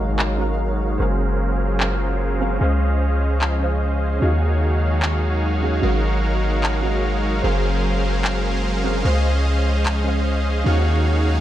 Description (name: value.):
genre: future bass.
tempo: 149 BPM.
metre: 4/4.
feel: half-time.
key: Db major.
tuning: A4 = 440 Hz.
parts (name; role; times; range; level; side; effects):
soft round pluck; accompaniment; 0.0-11.4 s; C4 to F5; -29 LUFS; right 3 dB; ensemble chorus, dub echo.
airy breathy pad; sustained chords; 0.0-11.4 s; Db3 to F5; -30 LUFS; left 2 dB; chorus.
supersaw chords; riff; 0.0-11.4 s; Eb3 to F5; -23 LUFS; right 1 dB; low-pass filter, dub echo.
long sustained 808-style bass; bass; 0.0-11.4 s; Gb1 to Eb2; -20 LUFS; equal; none.
impact; sound effects; 0.0-1.0 s; none; -39 LUFS; equal; none.
electronic handclaps; drums; 0.2-9.9 s; none; -25 LUFS; equal; low-pass filter on hats, low-pass filter on snare.
room: light reverb, digital ambience.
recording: none.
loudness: -18 LUFS.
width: side -12 dB against mid.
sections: 0.0-11.4 A section.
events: impact 0.0-1.0; filter sweep on supersaw synth 0.0-11.4.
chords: 0.0 Ab13sus4; 1.0 Gbmaj9#11; 2.6 Dbmaj7; 4.2 Ebm11; 5.8 Ab13sus4; 7.4 Gbmaj9#11; 9.1 Dbmaj7; 10.7 Ebm11.